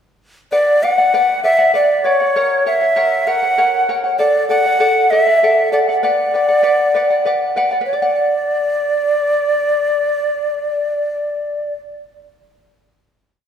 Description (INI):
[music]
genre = andean folk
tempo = 65 BPM (dotted quarters)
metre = 6/8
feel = straight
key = B minor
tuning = A4 = 440 Hz
[part]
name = breathy large quena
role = melody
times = 0.5-11.8 s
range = C#5 to F#5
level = -14 LUFS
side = equal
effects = none
[part]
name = charango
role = accompaniment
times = 0.5-12.0 s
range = A4 to F#5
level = -18 LUFS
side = left 1 dB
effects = none
[sound]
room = wet scoring stage reverb, RT60 1.5 s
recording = recorded in a church or concert hall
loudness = -13 LUFS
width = side -8 dB against mid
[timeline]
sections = 0.5-7.9 A section; 7.9-11.5 final chord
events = none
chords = 0.5 Bm; 2.4 F#; 4.2 D; 6.0 Bm